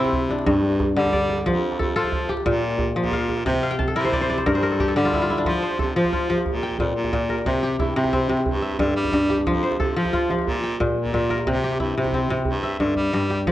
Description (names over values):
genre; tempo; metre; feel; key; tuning
west african traditional, West African string and xylophone music; 120 BPM (dotted quarters); 12/8; straight; F major; A4 = 440 Hz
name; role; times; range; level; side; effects
kora; arpeggios; 0.0-13.5 s; G2 to A5; -21 LUFS; left 1 dB; none
edgy baritone saxophone; bass; 0.0-13.5 s; F2 to G3; -27 LUFS; equal; none
djembe; percussion; 0.0-13.5 s; none; -28 LUFS; right 3 dB; none
room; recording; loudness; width
moderate recital hall reverb, RT60 1.5 s; worn, warbling old tape, cassette tape, warbly pitch drift; -20 LUFS; side -14 dB against mid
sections
0.0-5.5 A section; 5.5-13.5 B section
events
kora fill 3.6-5.5; drum fill 12.6-13.5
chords
0.5 G5; 1.5 F; 2.5 Bb5; 3.5 C; 4.5 G5; 5.5 F; 6.5 Bb5; 7.5 C; 8.5 G5; 9.5 F; 10.5 Bb5; 11.5 C; 12.5 G5